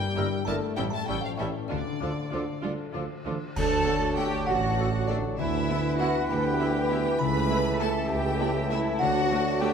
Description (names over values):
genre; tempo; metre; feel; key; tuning
cinematic, playful, whimsical film cue; 66 BPM (dotted quarters); 6/8; straight; D minor, D major from 3.6 s; A4 = 440 Hz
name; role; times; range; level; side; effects
music box; melody; 0.0-9.7 s; D5 to B5; -35 LUFS; right 2 dB; none
rich chamber violin section; melody; 0.0-9.7 s; D5 to A5; -39 LUFS; left 5 dB; none
mellow French horn section; sustained chords; 0.0-9.7 s; D3 to F#4; -34 LUFS; left 4 dB; none
concert harp; arpeggios; 0.0-9.7 s; G2 to E6; -34 LUFS; left 7 dB; none
mellow flute section; second line; 0.2-9.7 s; A5 to E6; -39 LUFS; left 2 dB; none
rich chamber violin section; second line; 0.2-9.7 s; F4 to B5; -36 LUFS; left 4 dB; none
warm clarinet; second line; 0.2-9.7 s; A4 to E5; -39 LUFS; left 1 dB; none
mellow bassoon; accompaniment; 0.2-9.7 s; E3 to G3; -36 LUFS; right 1 dB; none
rich chamber viola section; accompaniment; 0.2-9.7 s; A3 to A4; -37 LUFS; right 2 dB; none
clear chamber double bass section; bass; 0.2-9.7 s; G1 to D2; -33 LUFS; right 5 dB; none
warm studio cello section; bass; 0.2-9.7 s; G2 to B4; -32 LUFS; right 3 dB; none
warm tuba; bass; 0.2-9.7 s; G1 to D2; -33 LUFS; right 3 dB; none
clash cymbals and concert bass drum; percussion; 3.6-4.7 s; none; -37 LUFS; equal; none
room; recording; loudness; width
moderate scoring stage reverb, RT60 2.0 s; none; -24 LUFS; side -7 dB against mid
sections
0.0-3.6 A section; 3.6-9.7 B section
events
band accent 3.6-4.2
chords
0.0 Edim/G; 0.8 A7; 1.7 Dm; 3.6 D; 5.4 Em7/D; 7.2 A7/C#; 9.0 D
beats
0.78 | 1.71 2.64 | 3.56 4.47 | 5.38 6.29 | 7.20 8.11 | 9.01